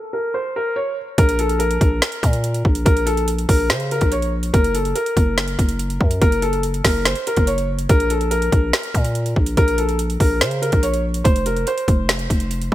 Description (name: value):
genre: hip hop, trap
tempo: 143 BPM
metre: 4/4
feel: half-time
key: unclear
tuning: A4 = 439 Hz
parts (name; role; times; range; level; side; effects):
- felt-muted upright piano; melody; 0.1-12.7 s; A4 to Db5; -22 LUFS; equal; ping-pong delay
- growling 808-style bass; bass; 1.2-12.7 s; F1 to Db3; -21 LUFS; equal; none
- trap drum kit; drums; 1.2-12.7 s; hi-hat, kick drum, snare drum; -18 LUFS; equal; none
room: little or no reverb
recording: bright 1980s-style digital production, low-pass filter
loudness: -16 LUFS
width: side -14 dB against mid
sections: 0.0-1.2 A section; 1.2-12.7 B section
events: filter sweep 0.0-1.2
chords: 0.0 N.C.; 4.5 Gb; 7.9 N.C.; 11.3 F5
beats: 0.34 0.76 | 1.18 1.60 2.02 2.44 | 2.86 3.28 3.70 4.12 | 4.54 4.96 5.38 5.80 | 6.22 6.64 7.05 7.47 | 7.89 8.31 8.73 9.15 | 9.57 9.99 10.41 10.83 | 11.25 11.67 12.09 12.51